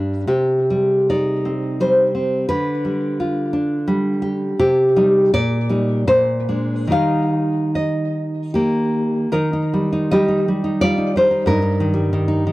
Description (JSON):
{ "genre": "romantic piece for solo classical guitar", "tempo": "67-92 BPM", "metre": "3/4", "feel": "rubato", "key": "Eb major from 4.6 s", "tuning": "A4 = 439 Hz", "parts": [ { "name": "nylon-string guitar", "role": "solo", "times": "0.0-12.5 s", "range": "G2 to F5", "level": "-16 LUFS", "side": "equal", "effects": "tape echo" } ], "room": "light reverb", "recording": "dry, close 1970s-style studio recording", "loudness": "-16 LUFS", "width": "side -18 dB against mid", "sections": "0.0-9.3 A section; 9.3-12.5 B section", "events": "none", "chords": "0.3 Cm; 2.5 G7/D; 4.6 Cm; 5.3 Eb/Bb; 6.1 Bb9; 6.9 Eb; 11.5 Eb/G", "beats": "| 0.30 1.11 1.81 | 2.50 3.20 3.88 | 4.57 5.33 6.07 | 6.92 7.74 8.53 | 9.32 10.10 10.79 | 11.46 12.12" }